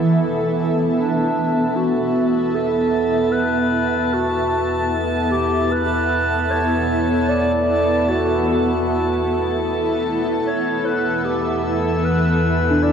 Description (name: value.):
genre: ambient.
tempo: 76 BPM.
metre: 3/4.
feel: straight.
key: unclear.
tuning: A4 = 439 Hz.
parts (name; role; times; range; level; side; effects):
dark clarinet; melody; 0.0-12.9 s; D4 to D5; -22 LUFS; equal; diffuse ambient delay.
granular cloud pad; sustained chords; 0.0-12.9 s; E3 to E5; -20 LUFS; equal; built-in reverb.
organ-like drone; drone; 0.4-1.1, 11.1-12.9 s; E3; -26 LUFS; equal; ensemble chorus, built-in reverb.
drifting glass-harmonics texture; texture; 0.1-12.9 s; E5 to A6; -28 LUFS; equal; chorus, built-in reverb.
round analog bass; bass; 1.0-12.9 s; E2; -28 LUFS; left 1 dB; tube saturation.
large celesta; arpeggios; 12.7-12.9 s; D4; -17 LUFS; left 1 dB; none.
room: wet concert hall reverb, RT60 2.1 s.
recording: worn, warbling old tape, cassette tape, warbly pitch drift.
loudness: -17 LUFS.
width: side -7 dB against mid.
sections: 1.0-12.9 A section.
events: fade-in on analog synth bass 1.0-12.9.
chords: 0.0 Asus2/E; 10.5 E5.